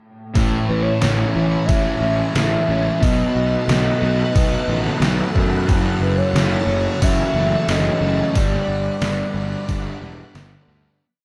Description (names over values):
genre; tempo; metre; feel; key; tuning
rock, shoegaze and dream pop; 90 BPM; 4/4; straight; unclear; A4 = 441 Hz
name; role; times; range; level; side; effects
phased string machine; sustained chords; 0.3-11.0 s; D#4 to B5; -34 LUFS; equal; ensemble chorus, phaser
overdriven semi-hollow guitar; riff; 0.3-11.0 s; F#2 to B3; -28 LUFS; equal; none
overdriven semi-hollow guitar; riff; 0.4-11.0 s; F#2 to C#4; -29 LUFS; equal; none
thick fuzz guitar; riff; 0.4-11.0 s; F#2 to F#4; -29 LUFS; equal; distortion, subtle chorus
fuzz fingered electric bass; bass; 0.4-10.9 s; E1 to F#2; -25 LUFS; equal; overdrive
detuned 8-bit digital drum machine; drums; 0.4-10.5 s; hi-hat, kick drum, snare drum; -23 LUFS; equal; none
pure breathy sine lead; melody; 0.7-10.3 s; B4 to E5; -26 LUFS; equal; chorus, slapback echo
room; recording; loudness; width
digital ambience; dark, warm production; -19 LUFS; mono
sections
0.4-11.0 verse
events
fade-out 8.3-11.0; break 10.7-11.0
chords
0.4 Amaj7; 3.0 B7; 5.7 F#m7; 8.3 Gmaj7